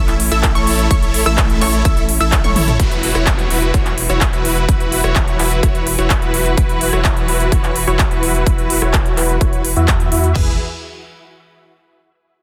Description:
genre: EDM, festival progressive house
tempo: 127 BPM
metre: 4/4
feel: straight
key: unclear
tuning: A4 = 441 Hz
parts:
  - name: clear symphonic string section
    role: sustained chords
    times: 0.0-10.6 s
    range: E3 to B4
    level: -27 LUFS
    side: equal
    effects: sidechain pumping
  - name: unison pluck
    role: arpeggios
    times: 0.0-2.8 s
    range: C#6 to E6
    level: -25 LUFS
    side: equal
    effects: sidechain pumping, tape echo
  - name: dense compressed supersaw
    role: riff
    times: 0.0-10.5 s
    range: E4 to E5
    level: -22 LUFS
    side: equal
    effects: sidechain pumping, low-pass filter, tape echo
  - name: saturated sub bass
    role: bass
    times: 0.0-10.6 s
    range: E1 to E2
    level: -22 LUFS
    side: equal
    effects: sidechain pumping
  - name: big-room dance drum kit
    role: drums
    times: 0.1-10.3 s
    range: handclaps, hi-hat, rim click, toms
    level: -22 LUFS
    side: equal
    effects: overdrive
  - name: big-room dance drum kit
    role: drums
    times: 0.4-10.5 s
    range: crash cymbal, kick drum, toms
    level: -19 LUFS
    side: equal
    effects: none
  - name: downlifter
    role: sound effects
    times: 2.8-6.6 s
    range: none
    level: -32 LUFS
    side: equal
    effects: none
room: light reverb, digital ambience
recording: dense, heavily limited modern master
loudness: -15 LUFS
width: mono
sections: 0.0-2.8 A section; 2.8-10.4 B section; 10.4-12.2 C section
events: drop 0.0-2.8; drum fill 2.4-2.8; filter sweep on supersaw synth 2.8-10.4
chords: 0.0 A; 2.8 Esus2; 10.4 E

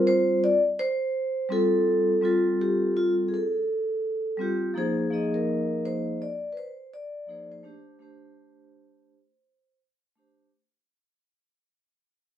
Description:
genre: hip hop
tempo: 83 BPM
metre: 4/4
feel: swing 61% on 16ths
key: unclear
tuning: A4 = 441 Hz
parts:
  - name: vibraphone with soft mallets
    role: melody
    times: 0.0-9.8 s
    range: F4 to D5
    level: -26 LUFS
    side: equal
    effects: none
  - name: vibraphone with medium hard mallets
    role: accompaniment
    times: 0.0-10.5 s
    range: F3 to Eb5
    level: -25 LUFS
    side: left 1 dB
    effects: none
room: wet studio reverb, RT60 0.6 s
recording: band playing live in one room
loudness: -23 LUFS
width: side -10 dB against mid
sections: 0.0-10.5 A section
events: fade-out 0.0-10.5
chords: 0.0 G9sus4; 4.8 Fm7; 7.6 Am7

